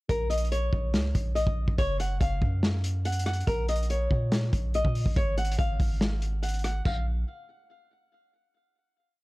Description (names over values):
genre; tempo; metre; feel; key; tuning
hip hop, trap; 142 BPM; 4/4; half-time; Bb minor; A4 = 441 Hz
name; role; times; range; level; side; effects
flamenco guitar; melody; 0.1-7.0 s; Bb4 to Gb5; -32 LUFS; left 1 dB; none
long sustained 808-style bass; bass; 0.1-7.2 s; Gb1 to Bb2; -28 LUFS; equal; none
vintage drum kit; drums; 0.1-7.0 s; crash cymbal, hi-hat, kick drum, rim click, snare drum; -29 LUFS; equal; none
room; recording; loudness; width
little or no reverb; dark, warm production; -25 LUFS; side -20 dB against mid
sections
0.1-6.9 hook; 6.9-8.5 final chord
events
none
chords
0.1 Bbm; 1.8 Dbadd11/Gb (rootless); 3.5 Bbm; 5.2 Dbadd11/Ab (rootless); 6.9 Bb5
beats
| 0.09 0.52 0.94 1.36 | 1.78 2.21 2.63 3.05 | 3.47 3.90 4.32 4.74 | 5.16 5.59 6.01 6.43 | 6.85